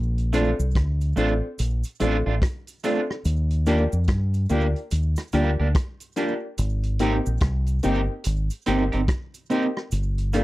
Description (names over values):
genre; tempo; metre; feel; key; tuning
lovers rock reggae; 72 BPM; 4/4; swing 62% on 16ths; Bb major; A4 = 436 Hz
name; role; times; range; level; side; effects
deep dub fingered electric bass; bass; 0.0-10.4 s; G1 to G2; -22 LUFS; equal; none
vintage drum kit; drums; 0.2-10.4 s; hi-hat, kick drum, rim click; -25 LUFS; equal; none
warm baby grand piano; accompaniment; 0.3-10.4 s; Bb3 to A4; -26 LUFS; left 3 dB; slapback echo
electric guitar at the edge of break-up; stabs; 0.3-10.4 s; A3 to G4; -25 LUFS; right 4 dB; harmonic tremolo
cabasa; percussion; 0.3-10.4 s; none; -45 LUFS; right 5 dB; slapback echo
room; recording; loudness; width
little or no reverb; dry, close 1970s-style studio recording; -21 LUFS; side -17 dB against mid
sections
0.0-10.4 A section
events
none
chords
0.0 Bbmaj7; 3.2 Ebmaj7; 6.6 Abmaj7; 9.9 Gm7